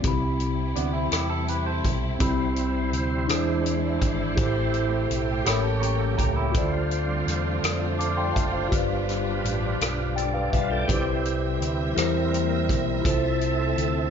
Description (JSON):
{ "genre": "slow gospel", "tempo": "55 BPM (dotted quarters)", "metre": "6/8", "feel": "straight", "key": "C major", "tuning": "A4 = 440 Hz", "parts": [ { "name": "mellow tine electric piano", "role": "accompaniment", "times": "0.0-14.1 s", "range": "G2 to D6", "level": "-26 LUFS", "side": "left 1 dB", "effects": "slow stereo tremolo" }, { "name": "warm studio string section", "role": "sustained chords", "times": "0.0-14.1 s", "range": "G3 to E5", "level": "-33 LUFS", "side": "equal", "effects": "none" }, { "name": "fingered electric bass", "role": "bass", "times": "0.0-14.1 s", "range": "F#1 to F2", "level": "-29 LUFS", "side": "equal", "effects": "none" }, { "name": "swinging big-band drum kit", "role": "drums", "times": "0.0-13.9 s", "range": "hi-hat, kick drum, rim click", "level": "-28 LUFS", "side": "equal", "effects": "none" }, { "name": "clean electric guitar", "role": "second line", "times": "0.8-6.7 s", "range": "B3 to C#5", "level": "-31 LUFS", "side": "right 3 dB", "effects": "none" }, { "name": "overdriven tonewheel organ", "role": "sustained chords", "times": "2.2-14.1 s", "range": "G3 to A5", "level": "-30 LUFS", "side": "right 4 dB", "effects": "fast rotary speaker, chorus vibrato" } ], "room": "light reverb", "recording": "nothing above 7.5 kHz", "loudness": "-22 LUFS", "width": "side -7 dB against mid", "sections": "0.0-14.1 A section", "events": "tonewheel organ fill 9.8-10.9", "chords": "0.0 Cmaj7; 3.3 Eaug7; 4.4 Am7; 5.5 A7b9; 6.5 Dm7; 8.7 G7; 10.9 Cmaj7; 12.0 C7/E; 13.0 Fmaj7/C" }